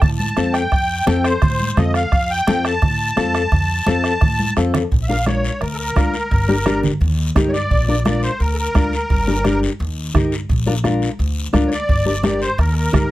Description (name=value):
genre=latin, cumbia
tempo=172 BPM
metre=4/4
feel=straight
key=Bb major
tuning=A4 = 440 Hz
part: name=musette accordion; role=melody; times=0.0-13.1 s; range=A4 to A5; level=-21 LUFS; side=equal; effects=none
part: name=upright bass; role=bass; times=0.0-13.1 s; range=G1 to A2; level=-21 LUFS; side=equal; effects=none
part: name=bombo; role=percussion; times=0.0-13.1 s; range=none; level=-19 LUFS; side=right 1 dB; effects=none
part: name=congas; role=percussion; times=0.0-13.1 s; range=none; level=-24 LUFS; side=right 1 dB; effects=none
part: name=guiro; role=percussion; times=0.0-13.1 s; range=none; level=-32 LUFS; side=left 5 dB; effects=none
part: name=nylon-string guitar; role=accompaniment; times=0.4-13.1 s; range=C4 to Bb4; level=-20 LUFS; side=left 3 dB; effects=none
room=light reverb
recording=close, detailed microphones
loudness=-15 LUFS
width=side -16 dB against mid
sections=0.0-4.9 A section; 4.9-13.1 B section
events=drum fill 4.4-4.9; accordion solo 4.9-13.1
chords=0.0 Fadd9; 4.9 Bb; 6.3 Gm; 7.0 Eb; 7.7 Bb; 9.1 Gm; 9.8 Eb; 10.5 Bb; 11.9 Gm; 12.6 Eb